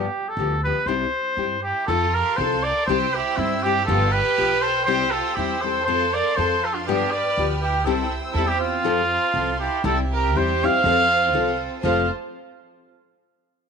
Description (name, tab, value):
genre	mexican folk, mariachi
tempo	121 BPM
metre	2/4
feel	swing 54% on 8ths, rubato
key	F major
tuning	A4 = 440 Hz
part	warm trumpet	melody	0.0-12.1 s	E4 to F5	-22 LUFS	right 1 dB	none
part	nylon-string guitar	accompaniment	0.0-12.1 s	G2 to A4	-26 LUFS	left 11 dB	none
part	upright bass	bass	0.0-12.1 s	F1 to G2	-28 LUFS	right 1 dB	none
part	bright studio violin section	second line	1.6-12.1 s	C4 to C5	-29 LUFS	right 14 dB	none
part	rich chamber violin section	sustained chords	1.9-12.1 s	C4 to F6	-30 LUFS	right 2 dB	none
room	light reverb, studio ambience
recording	1960s-style stereo with parts hard left and right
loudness	-19 LUFS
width	side -6 dB against mid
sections	0.0-1.9 A section; 1.9-9.8 B section; 9.8-11.8 C section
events	none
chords	0.0 G7; 0.9 C; 1.9 F; 2.9 C; 3.9 G7; 4.9 C; 5.9 F; 6.9 G7; 7.9 C; 8.8 F; 9.8 C; 10.8 F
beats	0.39 | 0.88 1.38 | 1.89 2.39 | 2.89 3.38 | 3.88 4.37 | 4.87 5.37 | 5.88 6.38 | 6.88 7.37 | 7.86 8.35 | 8.84 9.34 | 9.85 10.36 | 10.85 11.34 | 11.84